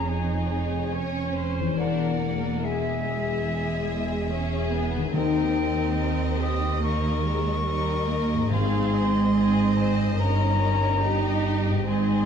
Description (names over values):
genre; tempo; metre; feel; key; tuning
classical; 71 BPM; 4/4; rubato; unclear; A4 = 436 Hz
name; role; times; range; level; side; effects
warm symphonic violin section; melody; 0.0-12.3 s; Db5 to F5; -37 LUFS; left 3 dB; none
rich symphonic violin section; second line; 0.0-12.3 s; G4 to Db5; -32 LUFS; left 4 dB; none
silver concert flute; second line; 0.0-12.3 s; E5 to Eb6; -32 LUFS; left 2 dB; none
rich symphonic viola section; accompaniment; 0.0-12.3 s; G3 to Eb4; -31 LUFS; right 2 dB; none
concert harp; arpeggios; 0.0-12.3 s; F2 to D5; -31 LUFS; left 10 dB; none
rich symphonic cello section; bass; 0.0-12.3 s; Eb2 to Ab2; -27 LUFS; right 2 dB; none
rich symphonic double bass section; bass; 0.0-12.3 s; E1 to Eb2; -29 LUFS; right 3 dB; none
timpani; percussion; 5.1-9.7 s; Ab2 to Eb3; -33 LUFS; left 1 dB; none
room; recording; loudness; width
moderate scoring stage reverb, RT60 2.0 s; dark, warm production; -22 LUFS; side -7 dB against mid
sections
0.0-12.3 A section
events
none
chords
0.0 Db/F; 1.8 E7; 5.1 Eb; 8.5 Ab; 10.2 Eb7/G